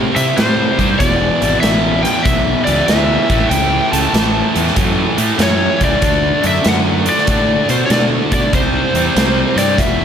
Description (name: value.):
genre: blues rock power trio and southern rock.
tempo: 96 BPM.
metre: 4/4.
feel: swing 66% on 8ths.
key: unclear.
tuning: A4 = 440 Hz.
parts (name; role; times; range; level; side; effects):
thick fuzz guitar; riff; 0.0-10.0 s; E2 to D4; -16 LUFS; right 1 dB; distortion, slapback echo.
fuzz fingered electric bass; bass; 0.0-10.0 s; E1 to C3; -20 LUFS; equal; overdrive.
overdriven slide guitar; melody; 0.2-10.0 s; C5 to A5; -18 LUFS; left 1 dB; slapback echo.
big rock drum kit; drums; 0.2-10.0 s; hi-hat, kick drum, snare drum; -18 LUFS; equal; none.
room: moderate lush hall reverb, RT60 1.9 s, small room ambience.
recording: big arena sound.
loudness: -12 LUFS.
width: side -8 dB against mid.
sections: 0.0-10.0 A section.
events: none.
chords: 0.0 C; 1.0 E5; 3.2 A; 6.0 D; 8.5 C5.